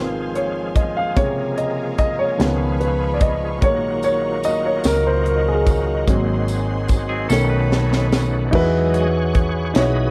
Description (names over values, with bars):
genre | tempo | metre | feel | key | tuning
slow gospel | 49 BPM (dotted quarters) | 6/8 | straight | Db major | A4 = 440 Hz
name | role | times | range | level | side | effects
warm grand piano | accompaniment | 0.0-10.1 s | C3 to F5 | -23 LUFS | equal | none
bright tonewheel organ | sustained chords | 0.0-10.1 s | Eb3 to D#5 | -29 LUFS | equal | slow rotary speaker, overdrive, chorus vibrato
warm studio string section | sustained chords | 0.0-8.5 s | Db5 to Db6 | -34 LUFS | equal | none
hollow-body short-scale fingered electric bass | bass | 0.0-10.1 s | Ab1 to E2 | -24 LUFS | equal | none
crisp fusion drum kit | drums | 0.4-9.9 s | crash cymbal, hi-hat, kick drum, snare drum | -23 LUFS | equal | none
tambourine | percussion | 4.0-8.5 s | none | -40 LUFS | equal | none
twangy electric guitar | second line | 7.1-8.5 s | C4 to Cb5 | -30 LUFS | equal | warbly pitch drift
room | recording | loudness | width
light reverb, small room reverb | vinyl crackle | -19 LUFS | mono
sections
0.0-8.5 A section; 8.5-10.1 B section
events
grand piano solo 0.0-8.5; drum fill 7.3-8.5; tonewheel organ solo 8.5-10.1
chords
0.0 Dbmaj7; 1.2 Bbm7; 2.4 Db7; 3.6 Gb6/Bb; 6.1 Ab7; 7.3 Cb9; 8.5 Emaj9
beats
| 1.16 2.39 | 3.62 4.85 | 6.08 7.31 | 8.53 9.76